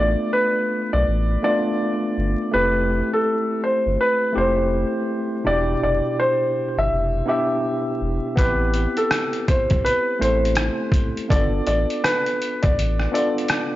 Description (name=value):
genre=lo-fi hip hop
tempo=82 BPM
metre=4/4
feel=swing 61% on 16ths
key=unclear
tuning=A4 = 442 Hz
part: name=felt-muted upright piano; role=melody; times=0.0-13.8 s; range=A4 to E5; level=-22 LUFS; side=equal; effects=low-pass filter, tape echo
part: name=bright tine electric piano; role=accompaniment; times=0.0-13.8 s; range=B2 to A4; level=-24 LUFS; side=equal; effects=overdrive, fast stereo tremolo, cassette tape, low-pass filter
part: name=sub bass with octave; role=bass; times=0.0-13.1 s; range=E1 to B1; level=-23 LUFS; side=equal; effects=transformer saturation
part: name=trip hop sampler-style drum kit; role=drums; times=8.4-13.7 s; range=hi-hat, kick drum, rim click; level=-22 LUFS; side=equal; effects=none
room=light reverb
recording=dry, gritty hardware recording, vinyl crackle, nothing above 7.5 kHz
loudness=-18 LUFS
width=side -15 dB against mid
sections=0.0-13.8 A section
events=none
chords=0.0 G7; 2.5 Fmaj7; 5.4 Em7; 8.4 Am9; 11.3 G7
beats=0.33 1.06 1.79 | 2.52 3.25 3.99 4.72 | 5.45 6.18 6.91 7.64 | 8.38 9.11 9.84 10.57 | 11.30 12.03 12.77 13.50